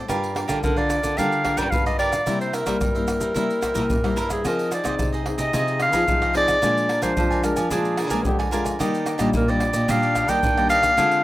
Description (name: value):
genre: samba and choro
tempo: 110 BPM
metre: 4/4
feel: straight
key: unclear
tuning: A4 = 439 Hz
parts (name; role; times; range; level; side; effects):
- cavaquinho; accompaniment; 0.0-11.2 s; D4 to Ab5; -29 LUFS; right 4 dB; none
- nylon-string guitar; accompaniment; 0.0-11.2 s; F2 to Bb4; -28 LUFS; left 3 dB; none
- nylon-string guitar; bass; 0.1-11.2 s; G2 to G3; -26 LUFS; equal; none
- maracas, surdo, pandeiro and tamborim; percussion; 0.1-11.2 s; none; -27 LUFS; right 1 dB; none
- clear clarinet; melody; 0.6-11.2 s; Ab4 to G5; -22 LUFS; equal; none
- warm trombone; second line; 4.4-11.2 s; D4 to G4; -31 LUFS; left 3 dB; none
room: light reverb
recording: rough home demo mix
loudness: -19 LUFS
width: side -16 dB against mid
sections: 0.0-11.2 A section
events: none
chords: 0.1 Gm7; 2.3 C7; 4.4 Fm7; 6.6 Bb7; 8.8 Ebmaj7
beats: | 0.09 0.64 1.18 1.73 | 2.27 2.81 3.36 3.90 | 4.45 4.99 5.53 6.08 | 6.62 7.17 7.71 8.26 | 8.80 9.34 9.89 10.43 | 10.98